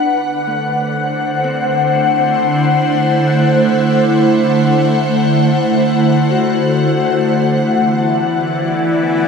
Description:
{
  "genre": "ambient",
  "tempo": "free time",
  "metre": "none",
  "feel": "none",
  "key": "unclear",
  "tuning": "A4 = 440 Hz",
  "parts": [
    { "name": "ethereal airy pad", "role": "sustained chords", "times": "0.0-9.3 s", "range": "D3 to F#5", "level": "-12 LUFS", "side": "equal", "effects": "ensemble chorus, built-in reverb, phaser, shimmer reverb" },
    { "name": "Celtic harp", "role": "arpeggios", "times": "0.0-8.7 s", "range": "A3 to F#4", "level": "-26 LUFS", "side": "left 3 dB", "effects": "none" },
    { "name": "bowed-like drone", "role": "drone", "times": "8.1-9.3 s", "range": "E3 to E4", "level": "-19 LUFS", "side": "left 1 dB", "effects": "built-in reverb, phaser" }
  ],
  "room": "wet cathedral reverb, RT60 6.9 s",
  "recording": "none",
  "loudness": "-12 LUFS",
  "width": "side -6 dB against mid",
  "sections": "0.0-9.3 A section",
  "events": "none",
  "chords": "0.0 D7; 7.3 Em7",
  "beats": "free time"
}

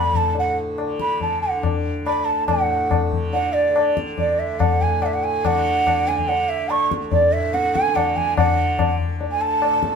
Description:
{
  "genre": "indian classical, Hindustani",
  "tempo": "142 BPM",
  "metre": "7/4",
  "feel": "straight",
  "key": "D raga yaman",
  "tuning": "A4 = 440 Hz",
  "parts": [
    { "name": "breathy hollow bansuri", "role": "melody", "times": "0.0-9.9 s", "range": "D5 to C#6", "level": "-20 LUFS", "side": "right 3 dB", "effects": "none" },
    { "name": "tanpura", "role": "drone", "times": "0.0-10.0 s", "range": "D2 to D3", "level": "-28 LUFS", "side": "equal", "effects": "none" },
    { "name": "tabla", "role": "percussion", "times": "0.1-10.0 s", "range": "none", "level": "-22 LUFS", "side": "left 5 dB", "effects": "none" }
  ],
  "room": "wet stone room reverb, RT60 1.1 s",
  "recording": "band playing live in one room",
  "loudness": "-18 LUFS",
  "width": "side -6 dB against mid",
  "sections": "0.0-2.5 A section; 2.5-10.0 B section",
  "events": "speeding up 0.0-10.0",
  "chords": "none",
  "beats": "0.34 0.77 1.20 1.63 2.05 | 2.48 2.90 3.33 3.75 4.17 4.60 5.02 | 5.44 5.86 6.28 6.70 7.12 7.54 7.95 | 8.37 8.79 9.20 9.61"
}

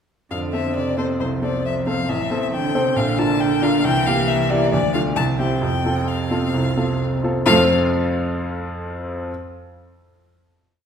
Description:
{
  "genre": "quick classical-period movement for piano trio",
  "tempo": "134 BPM",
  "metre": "4/4",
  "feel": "straight",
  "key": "F major",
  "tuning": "A4 = 440 Hz",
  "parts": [
    { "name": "rich violin", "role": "melody", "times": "0.3-7.7 s", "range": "C5 to A5", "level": "-24 LUFS", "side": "left 5 dB", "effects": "none" },
    { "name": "rich cello", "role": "second line", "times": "0.3-7.7 s", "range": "C3 to A3", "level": "-24 LUFS", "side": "right 4 dB", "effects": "none" },
    { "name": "bright baby grand piano", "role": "accompaniment", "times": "0.3-9.3 s", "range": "A1 to F5", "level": "-20 LUFS", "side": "equal", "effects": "none" }
  ],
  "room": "wet recital hall reverb, RT60 1.8 s",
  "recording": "heard from further back in the room",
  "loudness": "-18 LUFS",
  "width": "side -7 dB against mid",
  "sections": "0.3-7.5 A section; 7.5-9.3 final chord",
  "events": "none",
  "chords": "0.3 F; 2.1 Am; 3.0 Bb; 3.8 C7; 4.7 Dm; 5.2 C; 5.6 F",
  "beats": "| 0.32 0.77 1.21 1.65 | 2.09 2.53 2.97 3.41 | 3.85 4.28 4.72 5.16 | 5.62 6.08 6.54 7.00 | 7.47 7.92 8.38 8.83"
}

